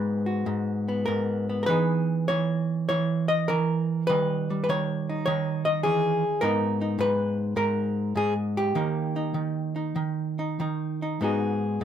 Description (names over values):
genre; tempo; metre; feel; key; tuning
solo jazz; 101 BPM; 4/4; swing 67% on 8ths, uneven beats, rubato; G# minor; A4 = 440 Hz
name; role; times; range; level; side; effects
archtop guitar, miked and amplified; solo; 0.0-11.8 s; G#2 to D#5; -24 LUFS; right 1 dB; none
room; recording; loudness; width
moderate club reverb, RT60 0.6 s; minimal, uncompressed stereo recording; -24 LUFS; side -9 dB against mid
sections
0.0-11.2 A section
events
none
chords
0.0 G#m7; 1.7 Emaj7; 4.1 D#7; 6.4 G#m; 8.8 D#; 11.2 G#m7